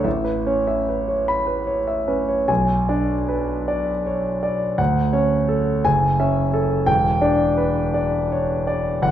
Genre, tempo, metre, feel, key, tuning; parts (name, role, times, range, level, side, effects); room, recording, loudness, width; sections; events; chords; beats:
classical, impressionist solo piano; 48-59 BPM (dotted quarters); 6/8; rubato; B dorian; A4 = 439 Hz
clear concert grand piano; solo; 0.0-9.1 s; E1 to B5; -18 LUFS; equal
wet recital hall reverb, RT60 1.6 s; dark, warm production; -18 LUFS; side -10 dB against mid
0.0-2.5 A section; 2.5-9.1 B section
0.0 Aadd9; 2.5 Bm6; 4.8 Dmaj7; 5.9 F#m9; 6.9 Em7
| 0.05 1.28 | 2.49 3.68 | 4.79 5.85 | 6.88 7.95 | 9.02